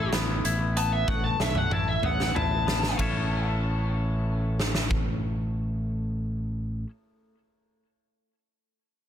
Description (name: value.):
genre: quiet-loud alternative rock.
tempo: 63 BPM (dotted quarters).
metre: 6/8.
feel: straight.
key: A major.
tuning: A4 = 442 Hz.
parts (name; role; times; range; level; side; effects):
bluesy overdriven lead guitar; melody; 0.0-3.0 s; E5 to A5; -30 LUFS; left 1 dB; distortion, digital delay.
semi-hollow electric guitar; arpeggios; 0.0-6.9 s; A3 to A4; -34 LUFS; left 3 dB; digital delay.
growling fingered electric bass; bass; 0.0-6.8 s; A1 to B1; -28 LUFS; equal; overdrive.
huge arena drum kit; drums; 0.1-5.0 s; hi-hat, kick drum, ride cymbal, snare drum, toms; -29 LUFS; equal; soft clipping on snare.
room: little or no reverb.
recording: dense, heavily limited modern master.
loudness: -24 LUFS.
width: side -10 dB against mid.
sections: 0.0-3.0 A section; 3.0-6.8 B section.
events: lead electric guitar solo 0.0-3.0; drum fill 1.1-3.0.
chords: 0.0 Asus2; 3.0 A.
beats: 0.11 | 1.07 2.02 | 2.98 3.94 | 4.89 5.85.